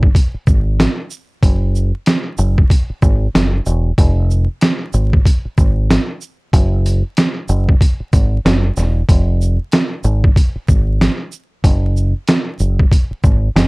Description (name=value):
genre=hip hop, boom-bap hip-hop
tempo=94 BPM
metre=4/4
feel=swing 60% on 16ths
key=F phrygian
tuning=A4 = 439 Hz
part: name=deep dub fingered electric bass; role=bass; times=0.0-13.7 s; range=E1 to Ab1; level=-14 LUFS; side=equal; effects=none
part: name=trip hop sampler-style drum kit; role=drums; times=0.0-13.7 s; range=hi-hat, kick drum, shaker, snare drum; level=-12 LUFS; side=equal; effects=none
room=little or no reverb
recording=vinyl crackle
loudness=-12 LUFS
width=side -27 dB against mid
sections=0.0-13.7 A section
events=none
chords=none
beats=0.15 0.79 | 1.43 2.06 2.70 3.34 | 3.98 4.62 5.26 5.89 | 6.53 7.17 7.81 8.45 | 9.09 9.72 10.36 11.00 | 11.64 12.28 12.91 13.55